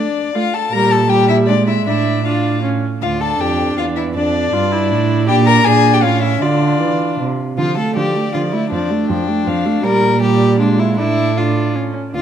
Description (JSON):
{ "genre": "quick classical-period movement for string quartet", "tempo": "158 BPM", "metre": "3/4", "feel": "straight", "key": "D minor", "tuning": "A4 = 440 Hz", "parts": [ { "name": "rich violin", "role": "melody", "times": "0.0-11.9 s", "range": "F4 to Bb5", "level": "-20 LUFS", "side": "left 8 dB", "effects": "none" }, { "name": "rich violin", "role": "second line", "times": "0.0-12.2 s", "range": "D4 to Bb4", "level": "-20 LUFS", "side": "left 4 dB", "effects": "none" }, { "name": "warm viola", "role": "accompaniment", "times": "0.0-12.2 s", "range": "F3 to F4", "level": "-18 LUFS", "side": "right 2 dB", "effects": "none" }, { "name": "warm cello", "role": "bass", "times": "0.7-12.2 s", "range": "D2 to E3", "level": "-18 LUFS", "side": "right 5 dB", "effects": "none" } ], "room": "moderate recital hall reverb, RT60 1.5 s", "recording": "none", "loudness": "-13 LUFS", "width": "side -9 dB against mid", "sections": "0.0-7.6 A section; 7.6-12.2 A section", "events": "none", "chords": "0.0 Dm; 0.7 Gm/Bb; 1.5 Bb7; 1.9 Dm/A; 2.6 A; 3.0 Dm; 4.2 Dm/F; 5.3 Gm/Bb; 6.0 A; 6.4 Dm; 8.7 Dm/F; 9.8 Gm/Bb; 10.6 Bb7; 11.0 Dm/A; 11.8 A", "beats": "0.35 | 0.72 1.09 1.47 | 1.86 2.25 2.63 | 3.01 3.40 3.77 | 4.15 4.53 4.91 | 5.28 5.65 6.03 | 6.41 6.80 7.19 | 7.58 7.96 8.35 | 8.72 9.09 9.47 | 9.84 10.21 10.60 | 10.98 11.37 11.76 | 12.14" }